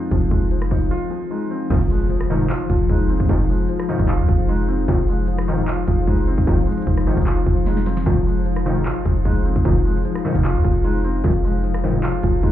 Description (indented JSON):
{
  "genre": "hip hop, trap",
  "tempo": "151 BPM",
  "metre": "4/4",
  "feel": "half-time",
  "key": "F minor",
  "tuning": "A4 = 443 Hz",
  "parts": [
    { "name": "dark grand piano", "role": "accompaniment", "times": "0.0-12.5 s", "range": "F3 to F4", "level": "-25 LUFS", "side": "right 3 dB", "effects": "none" },
    { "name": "mellow tine electric piano", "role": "arpeggios", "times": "0.0-12.5 s", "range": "F3 to Eb4", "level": "-24 LUFS", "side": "left 6 dB", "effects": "fast stereo tremolo, ping-pong delay" },
    { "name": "clean 808-style bass", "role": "bass", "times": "0.1-12.5 s", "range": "F1 to F2", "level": "-21 LUFS", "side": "equal", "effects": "none" },
    { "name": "trap drum kit", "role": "drums", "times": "0.1-12.5 s", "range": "crash cymbal, handclaps, hi-hat, kick drum, rim click, snare drum", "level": "-21 LUFS", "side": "equal", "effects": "none" },
    { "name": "glassy FM pad", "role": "sustained chords", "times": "2.2-12.5 s", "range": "Eb4 to F5", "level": "-32 LUFS", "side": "left 3 dB", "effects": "ensemble chorus, built-in reverb" },
    { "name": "sync-sweep polysynth", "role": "stabs", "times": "1.7-12.0 s", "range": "C2 to Eb3", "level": "-25 LUFS", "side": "right 2 dB", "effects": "chorus" },
    { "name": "impact", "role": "sound effects", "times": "1.7-3.3 s", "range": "none", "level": "-27 LUFS", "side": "equal", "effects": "none" }
  ],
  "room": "digital ambience",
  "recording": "heard muffled through a wall, club reverb, EQ",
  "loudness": "-17 LUFS",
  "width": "side -12 dB against mid",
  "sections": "0.0-1.7 A section; 1.7-12.5 B section",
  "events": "break 0.9-1.7; impact 1.7-3.3; drum fill 7.7-8.1",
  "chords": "0.0 Fm7"
}